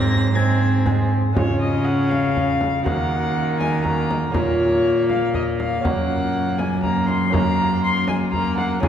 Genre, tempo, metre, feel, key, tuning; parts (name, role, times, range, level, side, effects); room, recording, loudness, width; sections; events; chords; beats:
classical, renaissance-style consort dance; 120 BPM; 3/4; straight; A4 = 441 Hz
dark violin; melody; 0.0-8.9 s; Db5 to Bb6; -24 LUFS; left 2 dB
lute; accompaniment; 0.0-8.9 s; Gb2 to Bb4; -25 LUFS; equal
warm viola; accompaniment; 0.0-8.9 s; Ab3 to Db4; -26 LUFS; left 1 dB
rich cello; bass; 0.0-8.9 s; Gb2 to Eb3; -21 LUFS; right 1 dB
frame drum; percussion; 0.9-8.9 s; -27 LUFS; equal
wet cathedral reverb, RT60 4.2 s; recorded in a church or concert hall; -18 LUFS; side -9 dB against mid
0.0-1.4 A section; 1.4-8.9 B section
0.0 Ab; 1.4 Db; 2.9 Ebm; 4.4 Bbm; 5.8 Gb
0.35 0.86 | 1.36 1.86 2.36 | 2.86 3.36 3.86 | 4.36 4.85 5.35 | 5.85 6.34 6.84 | 7.33 7.83 8.33 | 8.83